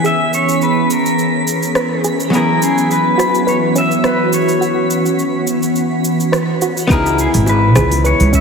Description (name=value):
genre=sunset chillout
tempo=105 BPM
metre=4/4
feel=swing 54% on 16ths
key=C# dorian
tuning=A4 = 438 Hz
part: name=archtop guitar, miked and amplified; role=accompaniment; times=0.0-8.3 s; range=C#3 to G#4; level=-21 LUFS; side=moving between left 3 dB and right 4 dB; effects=auto-pan, slapback echo
part: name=ethereal airy pad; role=sustained chords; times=0.0-8.4 s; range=C#3 to G#4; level=-17 LUFS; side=right 1 dB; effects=ensemble chorus, built-in reverb, phaser
part: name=soft round pluck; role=arpeggios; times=0.0-8.4 s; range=B3 to B4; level=-22 LUFS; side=right 2 dB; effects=chorus, digital delay
part: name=deep house drum kit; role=drums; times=0.0-8.4 s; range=cabasa, claves, hi-hat, rim click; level=-23 LUFS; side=right 1 dB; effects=none
part: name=twinkling granular texture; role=texture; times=0.0-6.9 s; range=B6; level=-29 LUFS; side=right 2 dB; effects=built-in reverb
part: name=pedal steel guitar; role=melody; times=0.1-8.4 s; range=G#4 to E5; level=-18 LUFS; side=left 3 dB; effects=digital delay, slapback echo
part: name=upright bass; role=bass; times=6.9-8.4 s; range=G#1 to C#2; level=-13 LUFS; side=right 1 dB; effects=none
part: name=electronic kick drum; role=drums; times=6.9-8.4 s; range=none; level=-17 LUFS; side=right 1 dB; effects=overdrive
part: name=bongos and congas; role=percussion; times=6.9-8.0 s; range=none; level=-23 LUFS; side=left 3 dB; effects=none
room=wet lush hall reverb, RT60 3.1 s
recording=big arena sound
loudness=-12 LUFS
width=side -5 dB against mid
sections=0.0-6.9 A section; 6.9-8.4 B section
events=filter sweep on ambient pad 0.0-6.9; filter sweep on synth arpeggio sound 0.0-6.9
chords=0.0 C#m7; 2.3 F#7sus4; 6.9 C#m7